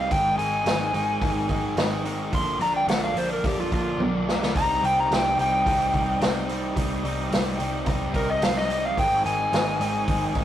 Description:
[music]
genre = blues rock power trio and southern rock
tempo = 108 BPM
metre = 4/4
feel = straight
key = C minor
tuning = A4 = 439 Hz
[part]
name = overdriven slide guitar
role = melody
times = 0.0-10.4 s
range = F4 to C6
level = -24 LUFS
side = equal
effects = none
[part]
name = overdriven semi-hollow guitar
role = riff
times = 0.0-10.4 s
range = Ab2 to Eb4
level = -28 LUFS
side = equal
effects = none
[part]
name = vintage muted picked electric bass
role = bass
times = 0.0-10.4 s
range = Ab1 to C2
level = -32 LUFS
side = left 1 dB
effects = none
[part]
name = vintage drum kit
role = drums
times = 0.1-10.4 s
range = hi-hat, kick drum, snare drum, toms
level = -27 LUFS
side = equal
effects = none
[part]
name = overdriven tonewheel organ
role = sustained chords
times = 4.5-10.4 s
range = C4 to Ab4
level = -36 LUFS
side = right 2 dB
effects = slow rotary speaker, chorus vibrato
[sound]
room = moderate stone room reverb, RT60 1.1 s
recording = rough rehearsal-room recording, tube saturation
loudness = -21 LUFS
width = side -11 dB against mid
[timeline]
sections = 0.0-10.4 A section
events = drum fill 4.0-4.5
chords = 0.1 Ab; 2.3 Bb; 4.5 Cm; 9.0 Ab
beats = | 0.11 0.67 1.22 1.77 | 2.33 2.88 3.44 3.99 | 4.54 5.10 5.65 6.21 | 6.76 7.31 7.87 8.42 | 8.97 9.52 10.08

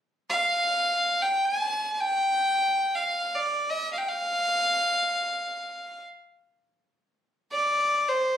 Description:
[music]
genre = arabic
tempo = free time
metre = none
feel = none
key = F maqam rast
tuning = A4 = 440 Hz
[part]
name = clear violin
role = solo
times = 0.3-8.4 s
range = C5 to A5-47c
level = -24 LUFS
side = equal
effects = none
[sound]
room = moderate small room reverb, RT60 0.5 s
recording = recorded on a phone in the room, studio reverb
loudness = -24 LUFS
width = side -9 dB against mid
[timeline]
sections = 0.0-8.4 A section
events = none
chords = none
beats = free time

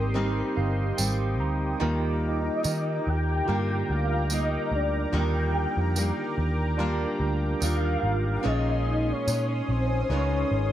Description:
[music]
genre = indie pop, bedroom pop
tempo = 72 BPM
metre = 4/4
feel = swing 55% on 16ths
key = Eb major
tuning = A4 = 442 Hz
[part]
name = soft octave-layered synth lead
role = melody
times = 0.0-10.7 s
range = Bb4 to G5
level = -31 LUFS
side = left 2 dB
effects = phaser, ensemble chorus, tape echo
[part]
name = picked steel-string acoustic guitar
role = accompaniment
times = 0.0-10.7 s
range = Bb2 to F4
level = -32 LUFS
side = left 1 dB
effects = wide subtle chorus, warbly pitch drift
[part]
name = tine electric piano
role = accompaniment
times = 0.0-10.7 s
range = D3 to Bb5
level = -32 LUFS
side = right 3 dB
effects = medium stereo tremolo, cassette tape
[part]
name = warm analog pad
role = sustained chords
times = 0.0-10.7 s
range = Db4 to Eb6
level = -35 LUFS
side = right 1 dB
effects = chorus
[part]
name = vintage muted picked electric bass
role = bass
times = 0.0-10.7 s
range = G1 to Eb3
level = -27 LUFS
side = equal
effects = none
[part]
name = tambourine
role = percussion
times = 1.0-9.5 s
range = none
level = -32 LUFS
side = right 5 dB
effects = none
[sound]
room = light reverb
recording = none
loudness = -24 LUFS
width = side -12 dB against mid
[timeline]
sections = 0.0-10.7 A section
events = tine electric piano fill 0.2-1.8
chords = 0.0 Abmaj7; 1.8 Ebmaj7; 8.4 Bbm11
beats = 0.17 0.99 | 1.82 2.65 3.48 4.31 | 5.14 5.96 6.79 7.62 | 8.45 9.27 10.10

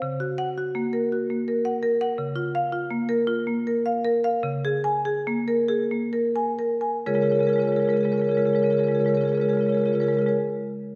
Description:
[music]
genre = classical, contemporary piece for solo marimba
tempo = 42-56 BPM (dotted quarters)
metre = 6/8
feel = rubato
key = Db major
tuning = A4 = 440 Hz
[part]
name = marimba with medium hard mallets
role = solo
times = 0.0-10.3 s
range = Db3 to Ab5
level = -24 LUFS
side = equal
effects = none
[sound]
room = wet recital hall reverb, RT60 1.6 s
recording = dark, warm production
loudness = -24 LUFS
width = mono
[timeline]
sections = 0.0-7.1 A section; 7.1-11.0 B section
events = slowing down 1.1-7.1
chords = 0.0 Gb/Db; 2.2 Db6; 4.4 Bbm7/Db; 7.1 Db6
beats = | 0.02 1.11 | 2.18 3.28 | 4.44 5.68 | 7.06 8.44 | 9.81

